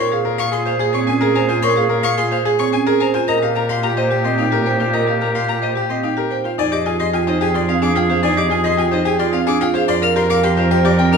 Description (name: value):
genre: classical, minimalist pattern music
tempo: 109 BPM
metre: 3/4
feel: straight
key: F dorian from 6.6 s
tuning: A4 = 440 Hz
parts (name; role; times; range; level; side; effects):
- bright grand piano; melody; 0.0-11.2 s; G4 to Ab5; -20 LUFS; left 9 dB; none
- warm oboe; second line; 0.0-11.2 s; G4 to Bb4; -24 LUFS; right 1 dB; none
- marimba with medium hard mallets; arpeggios; 0.0-11.2 s; C4 to C5; -19 LUFS; right 7 dB; none
- warm violin; arpeggios; 0.0-11.2 s; Eb5 to F6; -25 LUFS; left 4 dB; none
- warm cello; bass; 0.0-11.2 s; F2 to Bb2; -22 LUFS; right 2 dB; none
room: wet recital hall reverb, RT60 1.6 s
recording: none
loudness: -15 LUFS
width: side -5 dB against mid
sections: 0.0-6.6 A section; 6.6-11.2 B section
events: none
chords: 0.0 Bbm7; 3.3 Ebadd9/Bb; 6.6 Fm9; 9.9 Gm7/F